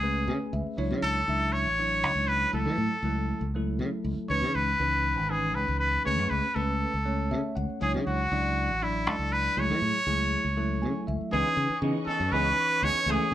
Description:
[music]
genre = jazz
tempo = 239 BPM (eighths)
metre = 7/8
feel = straight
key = unclear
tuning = A4 = 440 Hz
[part]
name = trumpet with straight mute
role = melody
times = 0.0-13.3 s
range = E4 to C#5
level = -27 LUFS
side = equal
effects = none
[part]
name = bell-like tine electric piano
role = accompaniment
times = 0.0-13.3 s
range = E3 to G#5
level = -32 LUFS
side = left 1 dB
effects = medium stereo tremolo
[part]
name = fingered electric bass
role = bass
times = 0.0-13.3 s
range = G#1 to E3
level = -30 LUFS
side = equal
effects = none
[part]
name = muted studio string section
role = sustained chords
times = 11.3-13.3 s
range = A3 to C#6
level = -39 LUFS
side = right 1 dB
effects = none
[part]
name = semi-hollow electric guitar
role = stabs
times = 11.3-13.2 s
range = E3 to G#4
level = -34 LUFS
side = right 4 dB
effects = none
[sound]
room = moderate studio reverb, RT60 0.6 s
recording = band playing live in one room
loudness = -25 LUFS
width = side -12 dB against mid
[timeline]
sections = 0.0-11.3 A section; 11.3-13.3 B section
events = tine electric piano fill 0.0-0.8, 7.1-7.8, 10.6-11.3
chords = 0.0 Amaj9/C#; 0.8 Dmaj9/C#; 2.5 F#m7/C#; 4.3 C#m9; 6.1 Amaj9/C#; 7.8 Dmaj9/C#; 9.6 F#m9/C#; 11.3 C#m9

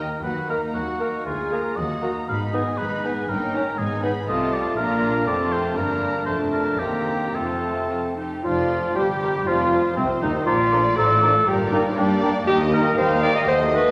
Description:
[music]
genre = quick classical-period movement for symphony orchestra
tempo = 119 BPM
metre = 2/4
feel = rubato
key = Eb minor, Bb major from 4.3 s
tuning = A4 = 437 Hz
[part]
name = warm oboe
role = second line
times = 0.0-13.9 s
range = C4 to F5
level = -31 LUFS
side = equal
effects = none
[part]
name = warm studio violin section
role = melody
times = 0.2-13.9 s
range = C4 to Cb6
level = -37 LUFS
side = equal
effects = none
[part]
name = rich studio violin section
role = second line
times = 0.2-13.9 s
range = D4 to F5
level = -34 LUFS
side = equal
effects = none
[part]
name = rich studio viola section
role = accompaniment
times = 0.2-13.9 s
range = Eb3 to Bb4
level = -36 LUFS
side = equal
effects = none
[part]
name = warm French horn section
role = sustained chords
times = 0.2-13.8 s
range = C3 to Ab4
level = -32 LUFS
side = equal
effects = none
[part]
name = rich studio cello section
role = bass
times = 0.2-13.9 s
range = C2 to G3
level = -32 LUFS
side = equal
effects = none
[part]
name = warm studio double bass section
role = bass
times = 0.2-13.9 s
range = F1 to G2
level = -32 LUFS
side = equal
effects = none
[part]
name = warm clarinet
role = second line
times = 0.5-13.9 s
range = C4 to Eb5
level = -26 LUFS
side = equal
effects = none
[part]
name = warm bassoon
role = accompaniment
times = 0.5-13.9 s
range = C3 to Db4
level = -32 LUFS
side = equal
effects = none
[part]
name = mellow hollow concert flute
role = second line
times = 8.4-13.9 s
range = C4 to Bb5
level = -33 LUFS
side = equal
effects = none
[sound]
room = wet scoring stage reverb, RT60 1.7 s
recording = none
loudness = -22 LUFS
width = mono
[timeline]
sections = 0.2-8.4 A section; 8.4-13.9 B section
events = none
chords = 0.2 Ebm; 1.3 Bb7/D; 1.8 Ebm; 2.3 Abm; 3.3 Eb7/G; 3.8 Abm; 4.3 F7/C; 4.8 Bb; 5.3 F; 5.8 Gm; 6.3 Dm/F; 6.8 Cm7/Eb; 7.3 F; 8.4 Bb6/F (rootless); 9.5 F5; 10.5 Bb; 11.5 Gm; 12.5 Eb

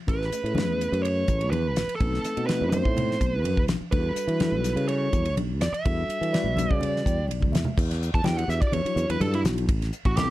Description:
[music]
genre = electric jazz fusion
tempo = 125 BPM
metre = 4/4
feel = straight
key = E dorian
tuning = A4 = 439 Hz
[part]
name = bluesy overdriven lead guitar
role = melody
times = 0.1-10.3 s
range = E4 to A5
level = -28 LUFS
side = right 3 dB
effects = distortion
[part]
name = mellow tine electric piano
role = accompaniment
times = 0.1-10.3 s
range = F#3 to G5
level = -32 LUFS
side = left 3 dB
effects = medium stereo tremolo
[part]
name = sustaining fretless electric bass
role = bass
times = 0.1-10.3 s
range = A1 to E3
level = -27 LUFS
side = equal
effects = none
[part]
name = damped 70s drum kit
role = drums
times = 0.1-10.3 s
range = crash cymbal, hi-hat, kick drum, ride cymbal, snare drum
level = -28 LUFS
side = equal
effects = none
[part]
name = congas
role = percussion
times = 0.1-10.3 s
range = none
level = -31 LUFS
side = left 1 dB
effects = none
[sound]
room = little or no reverb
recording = dark, warm production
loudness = -23 LUFS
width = side -16 dB against mid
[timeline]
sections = 0.0-7.8 A section; 7.8-10.3 B section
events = tine electric piano fill 6.8-7.8; drum fill 7.3-7.8; lead electric guitar solo 7.8-10.3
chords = 0.1 Amaj9; 2.0 B7b9; 3.9 Em11; 7.8 Em9; 9.7 Am9

